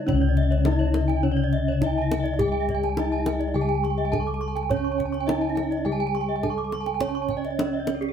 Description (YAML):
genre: Balinese gamelan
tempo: 104 BPM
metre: 4/4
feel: straight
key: C# pelog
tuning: A4 = 439 Hz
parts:
  - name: gamelan-type bronze metallophone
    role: melody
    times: 0.0-8.1 s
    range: C#4 to C#5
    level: -28 LUFS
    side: equal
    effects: none
  - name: gamelan-type bronze metallophone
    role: accompaniment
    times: 0.0-8.1 s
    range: C#3 to C#4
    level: -30 LUFS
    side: left 1 dB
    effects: none
  - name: gamelan-type bronze metallophone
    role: arpeggios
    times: 0.0-8.1 s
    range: G#4-45c to C#6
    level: -32 LUFS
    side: right 10 dB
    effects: none
  - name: gamelan-type bossed gongs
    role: bass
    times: 0.0-8.1 s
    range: C#2 to C#5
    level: -26 LUFS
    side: left 2 dB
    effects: none
  - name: gamelan-type bronze metallophone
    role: arpeggios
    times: 0.1-8.1 s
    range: A4-40c to D6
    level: -32 LUFS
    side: left 1 dB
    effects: none
  - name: kendang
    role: percussion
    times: 0.1-8.1 s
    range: none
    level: -32 LUFS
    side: equal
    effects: none
room: moderate studio reverb, RT60 0.8 s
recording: band playing live in one room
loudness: -22 LUFS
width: side -8 dB against mid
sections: 0.1-8.1 A section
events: none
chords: none